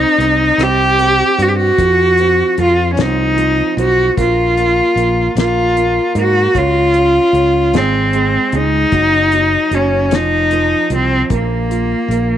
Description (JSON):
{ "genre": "acoustic folk-pop ballad", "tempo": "50 BPM (dotted quarters)", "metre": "6/8", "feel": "straight", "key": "Bb minor", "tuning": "A4 = 440 Hz", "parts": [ { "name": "warm cello", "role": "melody", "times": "0.0-12.4 s", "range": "Bb3 to G4", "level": "-13 LUFS", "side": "left 1 dB", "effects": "none" }, { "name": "warm upright piano", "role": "accompaniment", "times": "0.0-12.4 s", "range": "F3 to F4", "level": "-21 LUFS", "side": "right 12 dB", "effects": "none" }, { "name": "fingered electric bass", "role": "bass", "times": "0.0-12.4 s", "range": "F1 to Ab2", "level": "-18 LUFS", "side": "equal", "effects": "none" }, { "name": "cloth-damped thuddy drum kit", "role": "drums", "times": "0.2-12.3 s", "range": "hi-hat, kick drum, rim click, snare drum", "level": "-21 LUFS", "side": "left 4 dB", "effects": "none" } ], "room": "light reverb", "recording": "1960s-style stereo", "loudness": "-11 LUFS", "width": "side -10 dB against mid", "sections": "0.0-12.4 A section", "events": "none", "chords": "0.0 Cm; 0.6 C5; 1.8 F5; 4.2 Bb5; 5.4 Gbmaj9/Bb; 6.5 Db; 7.7 Ab; 8.9 Ebm/Gb; 10.1 F5; 11.3 Bb5", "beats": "0.59 | 1.78 2.98 | 4.17 5.36 | 6.55 7.73 | 8.92 10.11 | 11.30" }